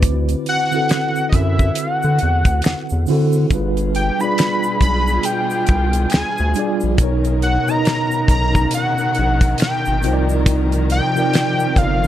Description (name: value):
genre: R&B, neo-soul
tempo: 69 BPM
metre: 4/4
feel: swing 58% on 16ths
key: unclear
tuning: A4 = 441 Hz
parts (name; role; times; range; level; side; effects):
- mellow tine electric piano; accompaniment; 0.0-12.1 s; B2 to D#5; -21 LUFS; right 1 dB; medium stereo tremolo, plate reverb
- round analog bass; bass; 0.0-12.1 s; G1 to D3; -18 LUFS; equal; none
- damped 70s drum kit; drums; 0.0-12.0 s; hi-hat, kick drum, snare drum; -17 LUFS; equal; none
- egg shaker and finger snaps; percussion; 0.0-12.1 s; none; -33 LUFS; left 2 dB; none
- fat analog lead; melody; 0.5-12.1 s; Eb5 to B5; -21 LUFS; left 1 dB; chorus, plate reverb, tape echo
- warm studio string section; sustained chords; 3.5-12.1 s; B2 to A#4; -26 LUFS; left 1 dB; plate reverb
room: light reverb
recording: dark, warm production, lossy compression artefacts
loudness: -15 LUFS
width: side -12 dB against mid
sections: 0.0-12.1 A section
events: none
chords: 0.0 D13; 3.5 G7b9; 7.0 Bmaj9; 10.0 Cm11